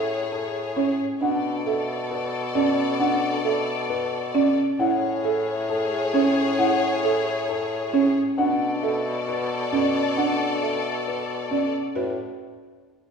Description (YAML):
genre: classical, minimalist pattern music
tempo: 134 BPM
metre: 4/4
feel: straight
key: unclear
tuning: A4 = 440 Hz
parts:
  - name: dark baby grand piano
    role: melody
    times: 0.0-12.2 s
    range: A4 to F#5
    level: -29 LUFS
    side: left 6 dB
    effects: none
  - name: warm symphonic string section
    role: sustained chords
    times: 0.0-11.7 s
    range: G#4 to D5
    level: -28 LUFS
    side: left 4 dB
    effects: none
  - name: buzzing marimba with soft mallets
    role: arpeggios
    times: 0.0-12.2 s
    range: C#4 to A4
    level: -24 LUFS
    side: right 4 dB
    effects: none
  - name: warm bassoon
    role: bass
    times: 0.0-12.2 s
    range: A2 to B2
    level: -29 LUFS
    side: left 1 dB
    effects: none
room: wet scoring stage reverb, RT60 1.6 s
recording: heard from further back in the room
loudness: -21 LUFS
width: side -6 dB against mid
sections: 0.0-12.0 A section; 12.0-13.1 B section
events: none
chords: 0.0 Amaj7; 1.2 Bm9; 4.8 Amaj7; 8.4 Bm9; 12.0 N.C.